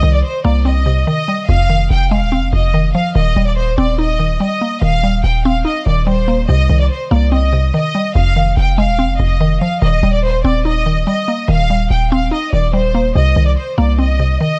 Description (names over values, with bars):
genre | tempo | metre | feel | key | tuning
hip hop, trap | 144 BPM | 4/4 | half-time | Eb major | A4 = 440 Hz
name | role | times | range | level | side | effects
bright studio violin section | melody | 0.0-14.6 s | C5 to G5 | -21 LUFS | equal | low-pass filter, tape echo
mallet-like synth pluck | accompaniment | 0.0-14.6 s | F2 to Eb4 | -20 LUFS | equal | chorus, low-pass filter
hard-hitting 808-style bass | bass | 0.0-14.4 s | Eb1 to C2 | -17 LUFS | equal | none
room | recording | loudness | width
small room ambience | none | -15 LUFS | mono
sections
0.0-13.2 A section; 13.2-14.6 B section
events
none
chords
0.0 Cm7; 1.5 Fm7; 3.2 Eb6; 6.5 Cm7; 8.2 Fm7; 9.8 Eb6; 13.2 Cm7